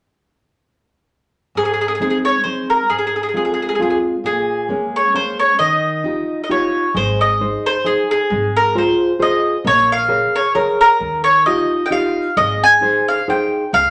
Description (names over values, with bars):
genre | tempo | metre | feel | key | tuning
italian folk, Italian serenade | 133 BPM | 3/4 | swing 55% on 8ths | Ab major | A4 = 440 Hz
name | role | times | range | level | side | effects
mandolin | melody | 1.6-13.9 s | Ab4 to Ab5 | -18 LUFS | equal | none
nylon-string guitar | accompaniment | 1.6-13.9 s | Ab2 to Db5 | -23 LUFS | equal | none
upright bass | bass | 6.9-13.9 s | Ab1 to Eb2 | -28 LUFS | equal | none
room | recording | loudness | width
wet studio reverb, RT60 0.8 s | none | -17 LUFS | mono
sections
1.5-7.0 A section; 7.0-13.9 B section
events
none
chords
1.5 Ab; 2.9 Fm/Ab; 4.3 Bbm7; 5.6 Ebadd9; 7.0 Ab; 8.3 Fm/Ab; 9.7 Bbm7; 11.0 Ebadd9; 12.4 Ab